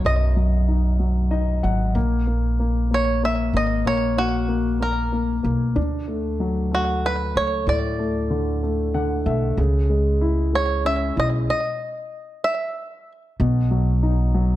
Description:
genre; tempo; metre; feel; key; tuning
six-eight pop ballad; 63 BPM (dotted quarters); 6/8; straight; unclear; A4 = 439 Hz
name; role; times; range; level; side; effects
warm grand piano; accompaniment; 0.0-14.6 s; F#2 to F#5; -24 LUFS; left 3 dB; none
upright bass; bass; 0.0-14.6 s; G#1 to D2; -22 LUFS; equal; none
bluegrass banjo; melody; 0.1-13.1 s; F#4 to E5; -24 LUFS; right 2 dB; slapback echo
room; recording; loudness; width
light reverb, small room ambience; dark, warm production; -19 LUFS; side -14 dB against mid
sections
0.0-13.4 A section; 13.4-14.6 B section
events
grand piano fill 1.0-2.0, 8.6-9.6; stop 11.5-13.4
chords
0.0 B; 2.0 N.C.; 5.8 D; 9.6 C#madd9; 13.4 B

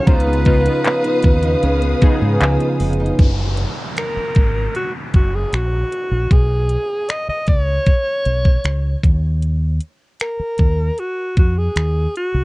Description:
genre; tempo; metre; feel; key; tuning
contemporary R&B; 77 BPM; 4/4; straight; unclear; A4 = 440 Hz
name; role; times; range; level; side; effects
warm alto saxophone; melody; 0.0-12.4 s; Gb4 to Eb5; -21 LUFS; equal; none
warm analog keys; accompaniment; 0.0-3.2 s; Db3 to Ab4; -20 LUFS; left 1 dB; chorus
dark studio string section; sustained chords; 0.0-3.2 s; Cb5 to Eb6; -27 LUFS; left 1 dB; none
nylon-string guitar; arpeggios; 0.0-3.8 s; Db3 to F4; -24 LUFS; right 3 dB; tape echo
large celesta; texture; 0.0-3.5 s; Ab5 to Bb5; -34 LUFS; equal; tape echo
deep dub fingered electric bass; bass; 0.1-12.4 s; F1 to Ab2; -18 LUFS; equal; none
trap drum kit; drums; 0.1-12.3 s; finger snaps, handclaps, hi-hat, kick drum; -14 LUFS; equal; none
downlifter; sound effects; 3.2-9.4 s; none; -30 LUFS; equal; none
room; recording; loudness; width
light reverb; cassette tape; -15 LUFS; side -21 dB against mid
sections
0.0-3.2 A section; 3.2-12.4 B section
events
none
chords
0.1 Db9; 3.2 Gbadd9; 6.3 Bsus2; 9.0 Eb5

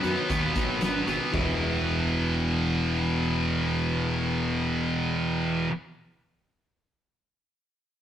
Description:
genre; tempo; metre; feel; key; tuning
quiet-loud alternative rock; free time; none; none; E major; A4 = 439 Hz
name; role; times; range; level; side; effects
electric guitar through a small old amp; arpeggios; 0.0-5.7 s; B2 to E4; -35 LUFS; left 2 dB; none
scooped high-gain guitar; riff; 0.0-5.7 s; E2 to B3; -26 LUFS; right 1 dB; distortion
fuzz picked electric bass; bass; 0.0-5.7 s; E1 to F#2; -32 LUFS; equal; overdrive
big rock drum kit; drums; 0.0-1.5 s; hi-hat, kick drum, snare drum, splash cymbal, toms; -32 LUFS; equal; none
room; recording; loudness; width
light reverb; rough rehearsal-room recording, tube saturation; -24 LUFS; side -10 dB against mid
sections
0.0-1.3 A section; 1.3-5.5 B section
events
none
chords
0.0 B; 1.3 E

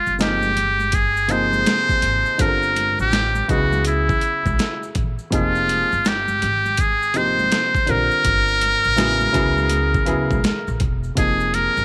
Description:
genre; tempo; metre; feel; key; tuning
hip hop, jazz-hop; 82 BPM; 4/4; swing 64% on 16ths; unclear; A4 = 440 Hz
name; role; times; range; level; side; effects
trumpet with metal mute; melody; 0.0-11.8 s; Fb4 to C5; -21 LUFS; equal; none
upright bass; bass; 0.1-11.8 s; Fb1 to Db2; -28 LUFS; equal; none
maracas and congas; percussion; 0.1-11.8 s; none; -36 LUFS; equal; none
dark grand piano; accompaniment; 0.2-11.8 s; C3 to Bb4; -27 LUFS; equal; none
boom bap sampler-style drum kit; drums; 0.2-11.8 s; hi-hat, kick drum, snare drum; -25 LUFS; equal; overdrive
room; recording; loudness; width
moderate spring reverb, RT60 2.9 s; none; -19 LUFS; mono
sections
0.0-11.8 A section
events
none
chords
0.0 Fm9; 2.4 Gm9; 3.5 Dbm7; 5.3 Fm9; 8.2 Gm9; 9.3 Dbm7; 11.2 Fm7

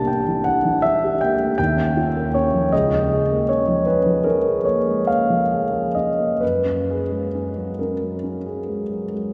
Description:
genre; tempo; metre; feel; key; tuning
classical, impressionist solo piano; 42-54 BPM (dotted quarters); 9/8; rubato; unclear; A4 = 440 Hz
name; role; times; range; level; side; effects
warm concert grand piano; solo; 0.0-9.3 s; C2 to A5; -20 LUFS; equal; none
room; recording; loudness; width
wet cathedral reverb, RT60 5.2 s; heard from further back in the room, nothing above 10.8 kHz; -20 LUFS; mono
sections
0.0-9.3 A section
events
none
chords
0.0 C9; 1.6 D#9; 2.7 C#69; 6.4 F#add9

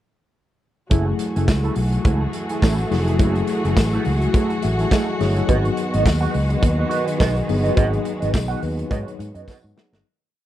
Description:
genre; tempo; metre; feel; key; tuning
disco; 105 BPM; 4/4; swing 56% on 16ths; F# dorian; A4 = 438 Hz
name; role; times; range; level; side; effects
mellow electric guitar; accompaniment; 0.9-10.0 s; A3 to F#5; -26 LUFS; right 6 dB; wah, lush chorus
mellow tine electric piano; accompaniment; 0.9-10.1 s; F#3 to F#5; -25 LUFS; left 4 dB; medium stereo tremolo
warm studio string section; sustained chords; 0.9-10.0 s; D#3 to G#4; -26 LUFS; equal; none
fingered electric bass; bass; 0.9-10.0 s; E#1 to G#2; -21 LUFS; equal; none
modern studio drum kit; drums; 0.9-10.0 s; hi-hat, kick drum, snare drum; -22 LUFS; equal; none
tambourine; percussion; 1.5-9.6 s; none; -38 LUFS; left 6 dB; none
room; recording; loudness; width
small room reverb; none; -17 LUFS; side -13 dB against mid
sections
0.9-10.0 groove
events
tine electric piano fill 4.3-5.5, 8.3-10.0; fade-out 7.8-10.0; drum fill 9.5-10.0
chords
0.9 F#m9; 5.5 G#m7

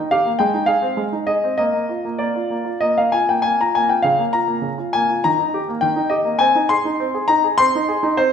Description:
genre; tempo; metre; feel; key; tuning
classical-period piano sonatina; 101 BPM; 4/4; rubato; Ab major from 4.1 s; A4 = 440 Hz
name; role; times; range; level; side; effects
clear baby grand piano; solo; 0.0-8.3 s; Db3 to C6; -16 LUFS; left 1 dB; none
room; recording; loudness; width
moderate recital hall reverb, RT60 1.7 s; minimal, uncompressed stereo recording; -16 LUFS; side -7 dB against mid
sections
0.0-8.3 A section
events
none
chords
0.4 Ab; 1.6 Bb; 4.1 Bbm/Db; 5.2 Eb; 6.4 Ab/C

